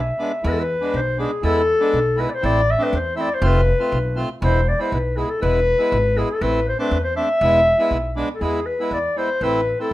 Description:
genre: klezmer.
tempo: 120 BPM.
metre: 2/4.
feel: straight.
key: E phrygian dominant.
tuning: A4 = 439 Hz.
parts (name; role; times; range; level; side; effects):
mellow clarinet; melody; 0.0-9.9 s; G#4 to E5; -20 LUFS; left 2 dB; none.
upright bass; bass; 0.0-9.9 s; E1 to E2; -22 LUFS; equal; none.
accordion; accompaniment; 0.2-9.9 s; G#3 to F4; -24 LUFS; right 1 dB; none.
room: wet studio reverb, RT60 0.6 s.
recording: rough home demo mix.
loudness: -17 LUFS.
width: side -15 dB against mid.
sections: 0.4-8.4 A section; 8.4-9.9 B section.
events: none.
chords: 0.4 E; 2.4 Am; 3.4 F; 4.4 E; 6.4 Am; 7.4 E; 9.4 Am.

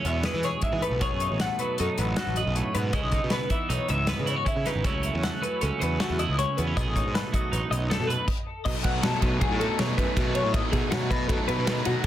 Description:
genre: math rock and midwest emo.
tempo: 157 BPM.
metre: 5/4.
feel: straight.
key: unclear.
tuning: A4 = 440 Hz.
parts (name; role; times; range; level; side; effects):
twelve-string electric guitar; accompaniment; 0.0-8.3 s; E2 to B4; -30 LUFS; right 5 dB; none.
twelve-string electric guitar; arpeggios; 0.0-12.1 s; F#4 to F#5; -30 LUFS; left 3 dB; phaser, tape echo.
fuzz picked electric bass; bass; 0.0-12.1 s; G#1 to E3; -29 LUFS; equal; overdrive.
modern studio drum kit; drums; 0.0-12.1 s; crash cymbal, hi-hat, kick drum, ride cymbal, snare drum; -29 LUFS; equal; soft clipping on snare.
crunchy overdriven guitar; riff; 8.7-12.1 s; B2 to D#4; -30 LUFS; right 1 dB; none.
room: light reverb.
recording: dense, heavily limited modern master.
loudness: -24 LUFS.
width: side -12 dB against mid.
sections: 0.0-8.7 A section; 8.7-12.1 B section.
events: stop 8.3-8.7.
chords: 0.0 E6; 1.0 B13; 2.9 C#m9; 4.9 F#m7/C#; 6.8 B6; 8.7 B7.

